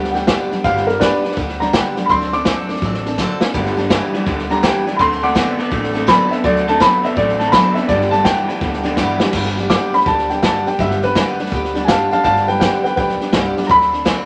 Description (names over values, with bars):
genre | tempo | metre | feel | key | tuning
rockabilly | 166 BPM | 4/4 | swing 64% on 8ths | G major | A4 = 440 Hz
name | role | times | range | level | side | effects
picked steel-string acoustic guitar | accompaniment | 0.0-14.3 s | G2 to A4 | -23 LUFS | equal | none
upright bass | bass | 0.0-14.1 s | G1 to D2 | -30 LUFS | equal | none
vintage drum kit | drums | 0.0-14.2 s | crash cymbal, hi-hat, kick drum, snare drum | -22 LUFS | equal | none
dark upright piano | melody | 0.1-14.3 s | D4 to D6 | -19 LUFS | equal | none
electric guitar through a small old amp | riff | 3.5-9.3 s | G2 to B3 | -24 LUFS | equal | spring reverb
room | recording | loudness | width
moderate studio reverb, RT60 0.8 s | none | -16 LUFS | mono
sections
0.0-9.3 A section; 9.3-14.3 A section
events
upright piano solo 0.0-14.3; drum fill 3.2-3.5, 9.0-9.3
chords
0.0 G; 2.1 D7; 3.5 G; 5.0 D7; 7.9 G; 13.7 D7